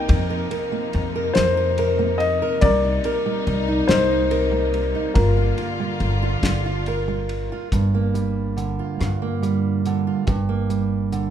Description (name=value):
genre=folk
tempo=47 BPM (dotted quarters)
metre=6/8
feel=straight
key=unclear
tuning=A4 = 441 Hz
part: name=dark upright piano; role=melody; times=0.0-6.8 s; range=Eb4 to G5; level=-23 LUFS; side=left 3 dB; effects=none
part: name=fingerpicked steel-string acoustic guitar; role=accompaniment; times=0.0-11.3 s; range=G2 to Bb4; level=-24 LUFS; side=right 3 dB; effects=none
part: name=warm chamber string section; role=sustained chords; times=0.0-7.7 s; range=C3 to F4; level=-28 LUFS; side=left 2 dB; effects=none
part: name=upright bass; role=bass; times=0.1-11.3 s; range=G1 to G2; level=-23 LUFS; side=equal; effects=none
part: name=cloth-damped thuddy drum kit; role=drums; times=0.1-11.3 s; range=hi-hat, kick drum, ride cymbal, rim click, snare drum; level=-23 LUFS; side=equal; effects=none
room=light reverb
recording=minimal, uncompressed stereo recording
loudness=-19 LUFS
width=side -9 dB against mid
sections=0.0-7.7 A section; 7.7-11.3 B section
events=none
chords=0.1 F7sus4; 2.6 Cm7; 5.2 Gm7